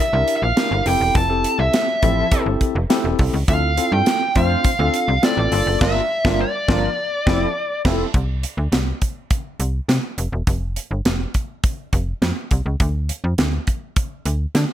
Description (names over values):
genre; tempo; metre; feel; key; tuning
early-eighties boogie funk; 103 BPM; 4/4; straight; unclear; A4 = 440 Hz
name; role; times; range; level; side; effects
nasal lead guitar with a parked wah; melody; 0.0-7.8 s; D5 to A5; -21 LUFS; equal; overdrive
tine electric piano; accompaniment; 0.0-8.1 s; Bb3 to C5; -24 LUFS; left 2 dB; medium stereo tremolo
slap-like FM bass; bass; 0.1-14.7 s; E1 to D3; -21 LUFS; equal; none
modern studio drum kit; drums; 0.3-14.7 s; crash cymbal, hi-hat, kick drum, snare drum; -20 LUFS; equal; gated reverb
mellow synth brass; second line; 1.1-8.0 s; F3 to C5; -27 LUFS; equal; chorus
room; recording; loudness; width
light reverb; none; -17 LUFS; side -11 dB against mid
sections
0.0-8.1 A section; 8.1-14.7 B section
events
band accent 5.8-8.1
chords
0.0 C7; 0.9 Fmaj7; 3.5 Dm7; 5.5 Gm7; 7.0 Fmaj7; 8.1 N.C.; 10.2 F5; 12.8 N.C.